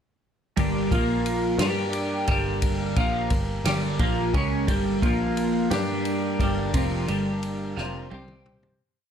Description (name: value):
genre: psychedelic rock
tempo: 58 BPM (dotted quarters)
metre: 6/8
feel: straight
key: G minor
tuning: A4 = 440 Hz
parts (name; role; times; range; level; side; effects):
- combo organ; sustained chords; 0.6-8.8 s; C3 to F5; -34 LUFS; right 3 dB; none
- twelve-string electric guitar; riff; 0.6-8.8 s; F2 to G4; -25 LUFS; equal; phaser, double-tracked left and right
- picked electric bass; bass; 0.6-8.8 s; F1 to G2; -30 LUFS; equal; none
- vintage drum kit; drums; 0.6-8.8 s; kick drum, ride cymbal, snare drum, toms; -28 LUFS; equal; none
room: light reverb, small room ambience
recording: none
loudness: -22 LUFS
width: side -8 dB against mid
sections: 0.6-8.8 riff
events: fade-out 6.7-8.8; drum fill 7.8-8.8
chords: 0.6 Gm; 0.9 Bb5; 1.6 Gm; 5.0 Bb5; 5.7 Gm; 8.1 C5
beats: | 0.57 1.60 | 2.63 3.66 | 4.68 5.71 | 6.74 7.77